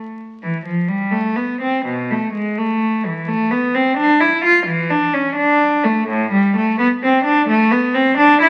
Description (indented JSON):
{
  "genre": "classical, baroque-style suite movement for unaccompanied cello",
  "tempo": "86 BPM (dotted quarters)",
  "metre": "6/8",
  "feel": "rubato",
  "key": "A minor",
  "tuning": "A4 = 441 Hz",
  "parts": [
    { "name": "rich cello", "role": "solo", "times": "0.0-8.5 s", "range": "A2 to F4", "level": "-16 LUFS", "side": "equal", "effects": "none" }
  ],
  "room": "wet stone room reverb, RT60 1.0 s",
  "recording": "very old 78 rpm record, vinyl crackle",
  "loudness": "-17 LUFS",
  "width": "mono",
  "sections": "0.4-8.5 A section",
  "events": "none",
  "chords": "none"
}